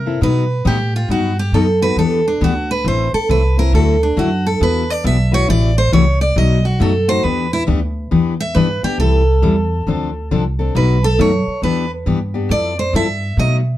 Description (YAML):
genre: acoustic string swing (jazz manouche)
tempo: 137 BPM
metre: 4/4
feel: swing 64% on 8ths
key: E minor, A minor from 9.0 s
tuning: A4 = 445 Hz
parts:
  - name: picked steel-string acoustic guitar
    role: melody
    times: 0.0-13.6 s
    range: D4 to E5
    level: -19 LUFS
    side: right 2 dB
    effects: none
  - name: upright bass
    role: bass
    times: 0.0-13.8 s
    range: A1 to C3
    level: -17 LUFS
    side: right 1 dB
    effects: none
  - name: picked steel-string acoustic guitar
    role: accompaniment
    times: 0.1-13.6 s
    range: B2 to B4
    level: -18 LUFS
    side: left 4 dB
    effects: none
room: light reverb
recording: dark, warm production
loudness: -13 LUFS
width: side -14 dB against mid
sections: 0.0-9.0 A section; 9.0-13.8 A section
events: steel-string acoustic guitar solo 0.0-13.8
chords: 0.2 B; 2.0 Em7; 2.9 Amadd9; 3.7 Dadd9; 4.6 Esus2; 5.5 F#m7b5; 6.4 B7; 7.2 Em7; 9.0 Am7; 9.9 Dm7; 10.7 B7; 11.6 Em7; 12.5 Fmaj7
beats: | 0.22 0.66 1.10 1.54 | 1.98 2.42 2.85 3.29 | 3.73 4.17 4.61 5.05 | 5.49 5.92 6.36 6.80 | 7.24 7.68 8.12 8.56 | 8.99 9.43 9.87 10.31 | 10.75 11.19 11.63 12.06 | 12.50 12.94 13.38